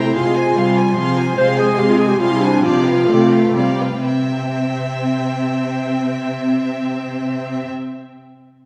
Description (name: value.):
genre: quick classical-period movement for symphony orchestra.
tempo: 118-148 BPM.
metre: 3/4.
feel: rubato.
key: C major.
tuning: A4 = 440 Hz.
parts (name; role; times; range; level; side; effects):
warm chamber violin section; melody; 0.0-7.7 s; F5 to C6; -31 LUFS; equal; none.
mellow clarinet; second line; 0.0-7.7 s; C4 to C5; -21 LUFS; equal; none.
rich chamber violin section; second line; 0.0-7.7 s; G4 to Ab5; -27 LUFS; equal; none.
rich studio viola section; accompaniment; 0.0-7.7 s; F3 to C4; -24 LUFS; equal; none.
warm chamber cello section; bass; 0.0-7.7 s; C3; -23 LUFS; equal; none.
room: wet recital hall reverb, RT60 1.8 s.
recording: none.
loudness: -17 LUFS.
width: mono.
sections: 0.0-4.1 A section; 4.1-7.0 B section.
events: slowing down 0.8-4.1.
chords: 0.2 Fm/C; 2.6 G7/C; 4.1 C.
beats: | 0.16 0.57 0.97 | 1.38 1.79 2.21 | 2.64 3.09 3.56 | 4.05 4.55 5.05 | 5.54 6.03 6.53.